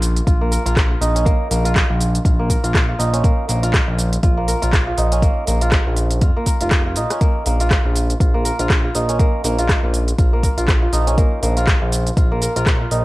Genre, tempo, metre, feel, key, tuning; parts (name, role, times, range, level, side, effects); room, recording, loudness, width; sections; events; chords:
afro house; 121 BPM; 4/4; swing 57% on 16ths; Bb minor; A4 = 439 Hz
kora; arpeggios; 0.0-13.0 s; Bb3 to Bb4; -22 LUFS; right 1 dB; sidechain pumping, cassette tape, analog delay
smooth synth bass; bass; 0.0-13.0 s; F1 to F2; -19 LUFS; equal; sidechain pumping
afro-pop drum kit; drums; 0.0-13.0 s; handclaps, hi-hat, rim click, shaker; -23 LUFS; equal; cassette tape
electronic kick drum; drums; 0.3-12.8 s; -16 LUFS; equal; cassette tape
little or no reverb; home recording on cassette; -15 LUFS; side -19 dB against mid
0.0-13.0 A section
0.0 Bbm; 3.2 Dbadd9/Bb; 7.2 Bbm